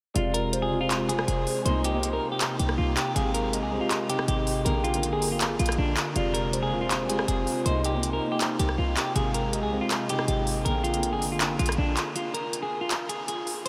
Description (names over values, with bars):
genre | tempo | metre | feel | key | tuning
hip hop, trap | 160 BPM | 4/4 | half-time | unclear | A4 = 440 Hz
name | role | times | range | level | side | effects
dark baby grand piano | accompaniment | 0.1-12.2 s | C3 to Bb4 | -34 LUFS | equal | subtle chorus
semi-hollow electric guitar | melody | 0.2-13.7 s | D4 to C5 | -32 LUFS | equal | harmonic tremolo, delay
hollow clarinet-like synth lead | second line | 0.2-11.8 s | C5 to G5 | -38 LUFS | equal | chorus, delay
hollow soft pad | sustained chords | 0.2-12.1 s | C3 to Ab4 | -37 LUFS | equal | chorus
short 808-style bass | bass | 0.2-12.0 s | F1 to C2 | -32 LUFS | equal | none
trap drum kit | drums | 0.2-13.7 s | handclaps, hi-hat, rim click | -33 LUFS | equal | none
room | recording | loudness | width
wet huge ambient reverb, RT60 7.7 s | dreamy mix soaked in reverb | -26 LUFS | mono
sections
0.2-12.2 A section; 12.2-13.7 B section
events
break 12.2-13.7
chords
0.2 Fm; 1.7 Cm7; 3.2 Abmaj7; 4.7 Bb7; 6.2 Fm; 7.7 Cm7; 9.2 Abmaj7; 10.7 Bb7; 12.2 N.C.